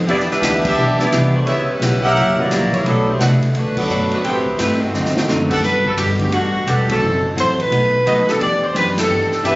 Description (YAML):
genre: jazz, big band swing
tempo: 173 BPM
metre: 4/4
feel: swing 63% on 8ths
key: G major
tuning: A4 = 440 Hz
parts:
  - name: dark concert grand piano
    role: accompaniment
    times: 0.0-8.4 s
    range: C#3 to G4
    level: -23 LUFS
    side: equal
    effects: none
  - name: mellow saxophone section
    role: melody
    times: 0.1-9.6 s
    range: D3 to E5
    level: -18 LUFS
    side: equal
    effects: none
  - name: archtop guitar, miked and amplified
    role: accompaniment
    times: 0.1-9.6 s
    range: B2 to B4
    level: -21 LUFS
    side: equal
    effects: none
  - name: clear trumpet section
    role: stabs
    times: 0.1-9.6 s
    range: F#4 to G5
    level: -23 LUFS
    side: right 1 dB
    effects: none
  - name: upright bass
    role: bass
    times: 0.1-9.6 s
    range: E1 to A2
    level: -21 LUFS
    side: equal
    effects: none
  - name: swinging big-band drum kit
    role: drums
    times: 0.1-9.6 s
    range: crash cymbal, hi-hat, kick drum, ride cymbal, snare drum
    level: -24 LUFS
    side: equal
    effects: none
room: moderate large studio reverb, RT60 1.4 s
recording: recorded on a phone in the room, club reverb, compression, nothing above 7.6 kHz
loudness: -14 LUFS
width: side -20 dB against mid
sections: 0.0-5.6 A section; 5.6-9.6 B section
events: band accent 0.6, 3.7, 6.8, 8.9; drum fill 4.9-5.3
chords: 0.1 Em7; 1.5 C#m7b5; 2.2 F#7b9; 2.9 Bm7; 4.2 Am9; 4.9 D7b9; 5.6 Gmaj9; 7.0 F#m7b5; 7.7 B7; 8.4 Em7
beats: | 0.08 0.42 0.77 1.12 | 1.47 1.81 2.16 2.51 | 2.85 3.20 3.55 3.89 | 4.24 4.59 4.93 5.28 | 5.63 5.97 6.32 6.67 | 7.02 7.36 7.71 8.06 | 8.40 8.75 9.10 9.45